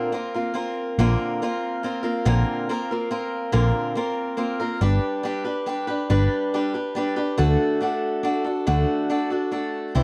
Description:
folk rock and heartland rock; 140 BPM; 3/4; straight; A4 = 440 Hz
picked swing-style acoustic guitar; accompaniment; 0.0-10.0 s; Bb2 to C5; -26 LUFS; equal
hollow-body short-scale picked electric bass; bass; 1.0-10.0 s; G1 to D2; -21 LUFS; equal
light reverb; dark, warm production; -24 LUFS; mono
0.0-10.0 A section
0.0 Bbadd9; 4.8 G; 7.4 D
0.13 0.56 | 0.98 1.41 1.84 | 2.26 2.69 3.12 | 3.54 3.97 4.40 | 4.82 5.25 5.68 | 6.10 6.53 6.96 | 7.38 7.81 8.24 | 8.67 9.10 9.52 | 9.95

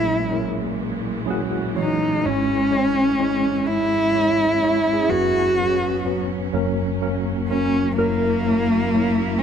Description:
acoustic folk-pop ballad; 42 BPM (dotted quarters); 6/8; straight; A4 = 438 Hz
dark cello; melody; 0.0-9.4 s; A#3 to F#4; -20 LUFS; equal
tine electric piano; accompaniment; 0.0-9.4 s; F#1 to C#5; -24 LUFS; left 1 dB; overdrive, fast stereo tremolo
warm symphonic string section; sustained chords; 0.0-9.4 s; F#2 to E4; -28 LUFS; right 1 dB
mellow electric guitar; arpeggios; 1.3-9.4 s; E4 to A#4; -27 LUFS; right 2 dB; tremolo
light reverb; -18 LUFS; side -8 dB against mid
0.0-9.4 A section
0.0 F#7/A#; 2.2 C#m/G#; 5.1 F#sus4; 6.5 F#; 8.0 F#7
0.80 | 2.23 3.67 | 5.11 6.54 | 7.97 9.41

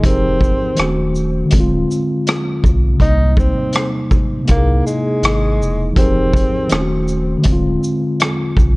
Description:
lo-fi hip hop; 81 BPM; 4/4; swing 55% on 16ths; C minor; A4 = 441 Hz
mellow tine electric piano; accompaniment; 0.0-8.8 s; C3 to Bb4; -18 LUFS; equal; medium stereo tremolo, cassette tape, low-pass filter
warm sub bass; bass; 0.0-8.8 s; D1 to C2; -18 LUFS; equal
vintage drum kit; drums; 0.0-8.8 s; hi-hat, kick drum, rim click, shaker; -16 LUFS; equal
mellow tenor saxophone; melody; 0.1-6.9 s; G#3 to Eb4; -21 LUFS; equal; low-pass filter, analog delay
light reverb, small room ambience; cassette tape; -13 LUFS; side -24 dB against mid
0.0-8.8 A section
0.0 Fm11; 0.8 D#m7b5; 1.5 Dm7b5; 3.0 Cm7; 4.5 C7alt; 6.0 Fm11; 6.7 D#m7b5; 7.4 Dm7b5
| 0.04 0.78 1.52 2.26 | 3.00 3.74 4.48 5.22 | 5.97 6.71 7.45 8.19

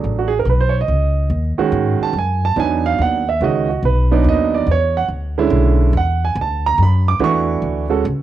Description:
modal jazz; 142 BPM; 3/4; swing 66% on 8ths; C# phrygian; A4 = 440 Hz
warm grand piano; accompaniment; 0.0-8.0 s; D3 to D6; -17 LUFS; right 7 dB; cassette tape
upright bass; bass; 0.0-8.2 s; A1 to G#2; -17 LUFS; left 1 dB
moderate studio reverb, RT60 0.5 s; home recording on cassette; -14 LUFS; side -12 dB against mid
0.0-8.2 A section
0.0 C#9sus4; 4.7 E9sus4
0.04 0.46 | 0.88 1.31 1.73 | 2.15 2.57 2.99 | 3.41 3.83 4.26 | 4.68 5.10 5.52 | 5.94 6.36 6.78 | 7.20 7.62 8.04

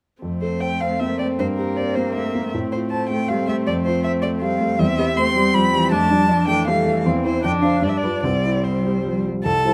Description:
quick classical-period movement for piano quartet; 158 BPM; 3/4; rubato; F major, C major from 4.8 s; A4 = 439 Hz
warm cello; second line; 0.2-9.7 s; D3 to A4; -28 LUFS; equal
dark viola; accompaniment; 0.2-9.3 s; A3 to D4; -27 LUFS; equal
warm baby grand piano; accompaniment; 0.2-9.7 s; C2 to D5; -25 LUFS; equal
warm violin; melody; 0.4-9.7 s; Bb4 to C6; -25 LUFS; equal
light reverb; close, detailed microphones; -20 LUFS; mono
0.2-9.4 A section
0.2 F; 1.4 C7/G; 2.5 F/A; 3.7 F; 4.8 C/E; 5.9 Dm/F; 7.1 C/E; 7.4 Dm7/F; 7.8 G7; 8.2 C
| 0.23 0.62 1.00 | 1.39 1.77 2.15 | 2.53 2.91 3.29 | 3.67 4.04 4.42 | 4.79 5.17 5.54 | 5.92 6.29 6.67 | 7.05 7.43 7.83 | 8.24 8.65 9.05 | 9.45

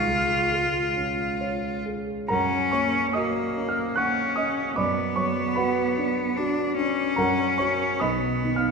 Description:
classical, romantic duo for cello and grand piano; 67-76 BPM; 3/4; rubato; F# major; A4 = 441 Hz
bright cello; melody; 0.0-8.7 s; A#3 to E#4; -25 LUFS; left 2 dB
dark concert grand piano; accompaniment; 0.0-8.7 s; B1 to F#6; -25 LUFS; right 2 dB
wet church reverb, RT60 2.6 s; recorded in a church or concert hall; -22 LUFS; side -4 dB against mid
0.0-8.7 A section
0.0 C#; 2.3 F#; 4.8 Bm/F#; 7.2 F#; 8.0 B
0.51 1.41 | 2.29 3.15 3.97 | 4.77 5.57 6.37 | 7.18 8.01

